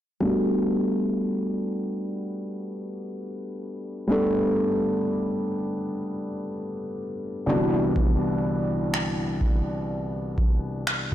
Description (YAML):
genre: contemporary R&B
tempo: 62 BPM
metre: 4/4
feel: swing 54% on 16ths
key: G major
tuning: A4 = 440 Hz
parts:
  - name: felt-muted upright piano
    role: accompaniment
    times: 0.2-11.1 s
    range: C2 to A4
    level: -25 LUFS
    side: equal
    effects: low-pass filter
  - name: booming analog drum machine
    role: drums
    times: 8.0-11.1 s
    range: finger snaps, kick drum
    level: -24 LUFS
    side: equal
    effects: soft clipping on snare
room: light reverb, digital ambience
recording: blown-out, overdriven recording, overdrive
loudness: -24 LUFS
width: side -12 dB against mid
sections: 0.2-11.1 A section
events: none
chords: 0.2 Gmaj7; 7.5 Cmaj9#11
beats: | 0.22 1.18 2.15 3.12 | 4.09 5.05 6.02 6.99 | 7.96 8.93 9.89 10.86